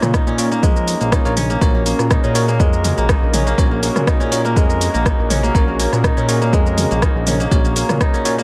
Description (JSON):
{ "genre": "afro house", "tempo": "122 BPM", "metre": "4/4", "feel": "swing 53% on 16ths", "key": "unclear", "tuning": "A4 = 440 Hz", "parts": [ { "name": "warm analog pad", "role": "sustained chords", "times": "0.0-8.4 s", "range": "Bb3 to Bb4", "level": "-28 LUFS", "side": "equal", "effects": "chorus, sidechain pumping" }, { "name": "kora", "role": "arpeggios", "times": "0.0-8.4 s", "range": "Ab3 to Bb4", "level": "-24 LUFS", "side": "equal", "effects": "sidechain pumping, dub echo" }, { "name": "bell-like tine electric piano", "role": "stabs", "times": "0.0-8.3 s", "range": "Bb3 to Db5", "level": "-26 LUFS", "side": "equal", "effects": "sidechain pumping, analog delay" }, { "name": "smooth synth bass", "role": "bass", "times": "0.0-8.4 s", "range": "Bb1 to Bb2", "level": "-22 LUFS", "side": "equal", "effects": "sidechain pumping" }, { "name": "deep house drum kit", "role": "drums", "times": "0.0-8.4 s", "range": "hi-hat, rim click, shaker, toms", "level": "-24 LUFS", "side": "equal", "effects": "overdrive, analog delay" }, { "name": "electronic kick drum", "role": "drums", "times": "0.1-8.1 s", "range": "none", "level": "-18 LUFS", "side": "equal", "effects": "overdrive" } ], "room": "light reverb", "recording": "echo-heavy mix", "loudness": "-16 LUFS", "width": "mono", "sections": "0.0-8.4 A section", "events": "none", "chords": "0.0 Bbm; 1.6 Gb/Bb" }